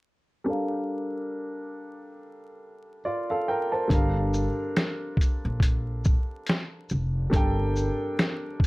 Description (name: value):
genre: lo-fi hip hop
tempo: 70 BPM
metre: 4/4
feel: swing 58% on 16ths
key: G minor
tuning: A4 = 440 Hz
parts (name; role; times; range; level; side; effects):
- warm upright piano; accompaniment; 0.4-8.7 s; G3 to A5; -29 LUFS; equal; cassette tape, low-pass filter
- upright bass; bass; 3.9-7.9 s; F1 to Bb1; -27 LUFS; equal; none
- lo-fi sampler-style drum kit; drums; 3.9-8.7 s; hi-hat, kick drum, shaker, snare drum; -23 LUFS; equal; none
room: moderate studio reverb, RT60 0.6 s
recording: vinyl crackle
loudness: -24 LUFS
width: side -22 dB against mid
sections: 0.5-3.9 A section; 3.9-8.7 B section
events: filter sweep on upright piano 0.5-3.9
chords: 0.5 Gm9